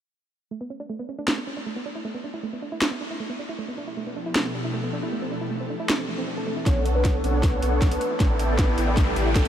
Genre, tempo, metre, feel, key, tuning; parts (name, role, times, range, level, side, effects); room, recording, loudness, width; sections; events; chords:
future bass; 156 BPM; 4/4; half-time; B phrygian; A4 = 440 Hz
soft round pluck; arpeggios; 0.5-9.5 s; A3 to A4; -33 LUFS; right 3 dB; chorus, sidechain pumping, tape echo
trap drum kit; drums; 1.3-9.5 s; hi-hat, snare drum; -29 LUFS; equal
ethereal airy pad; sustained chords; 3.9-9.5 s; B2 to A4; -32 LUFS; left 1 dB; ensemble chorus, built-in reverb, sidechain pumping
warm velvety synth lead; melody; 6.7-9.5 s; G4 to C#5; -30 LUFS; equal; chorus, tremolo, sidechain pumping, tape echo
supersaw chords; riff; 6.7-9.5 s; B3 to G5; -27 LUFS; equal; analog chorus, sidechain pumping, low-pass filter
saturated sub bass; bass; 6.7-9.5 s; A1 to B1; -25 LUFS; equal; sidechain pumping
electronic kick drum; drums; 6.7-9.4 s; -21 LUFS; equal
riser; sound effects; 7.5-9.5 s; -35 LUFS; left 1 dB
moderate huge ambient reverb, RT60 8.3 s; dreamy mix soaked in reverb; -23 LUFS; side -10 dB against mid
0.5-6.7 A section; 6.7-9.5 B section
filter sweep on synth arpeggio sound 0.5-6.7; build-up 6.7-9.5; drum fill 6.7-9.5; filter sweep on supersaw synth 6.7-9.5; riser 7.5-9.5
0.5 Bm9; 1.9 Asus24; 3.6 G13/B; 5.1 C69; 6.7 Bm9; 8.0 A9sus4